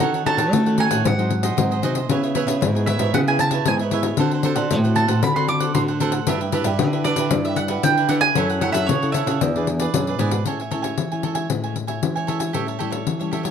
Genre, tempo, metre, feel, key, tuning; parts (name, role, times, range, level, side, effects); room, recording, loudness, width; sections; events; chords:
samba and choro; 115 BPM; 4/4; straight; E major, A major from 10.5 s; A4 = 441 Hz
mandolin; melody; 0.0-9.9 s; C#5 to D6; -22 LUFS; right 4 dB
cavaquinho; accompaniment; 0.0-13.5 s; D4 to G#5; -27 LUFS; right 7 dB
nylon-string guitar; accompaniment; 0.0-13.5 s; G#2 to B4; -25 LUFS; left 3 dB
nylon-string guitar; bass; 0.0-10.4 s; E2 to A3; -23 LUFS; right 1 dB
pandeiro; percussion; 0.0-13.5 s; -24 LUFS; left 7 dB
light reverb; close, detailed microphones; -18 LUFS; side -8 dB against mid
0.0-10.5 A section; 10.5-13.5 B section
0.0 D#m7b5; 1.0 G#7; 2.1 C#m7; 4.2 D7; 6.3 G6; 8.4 F#m7; 9.4 E7; 10.5 Amaj7; 12.6 A7